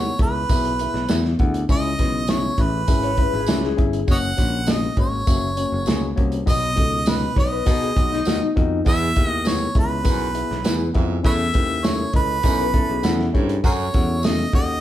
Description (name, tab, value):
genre	uptempo 1960s-style soul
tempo	100 BPM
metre	4/4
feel	straight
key	E major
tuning	A4 = 440 Hz
part	clear harmonica	melody	0.0-14.8 s	G#4 to F#5	-25 LUFS	right 2 dB	none
part	tine electric piano	accompaniment	0.0-14.8 s	B2 to F#5	-26 LUFS	left 4 dB	none
part	modern bright picked electric bass	bass	0.0-14.8 s	F#1 to B2	-25 LUFS	equal	none
part	warm soul drum kit	drums	0.2-14.7 s	hi-hat, kick drum, snare drum	-21 LUFS	equal	none
part	tambourine	percussion	0.5-14.4 s	none	-36 LUFS	right 3 dB	none
part	electric guitar through a small old amp	riff	3.0-8.8, 12.6-13.6 s	D#4 to C#5	-26 LUFS	left 6 dB	harmonic tremolo
part	growling baritone saxophone	riff	8.9-13.9 s	E2 to A2	-32 LUFS	right 6 dB	none
room	light reverb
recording	band playing live in one room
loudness	-18 LUFS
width	side -12 dB against mid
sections	0.0-14.8 A section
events	none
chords	0.0 E; 1.7 C#m; 4.1 F#; 6.5 B; 8.9 E; 11.3 A; 13.6 F#m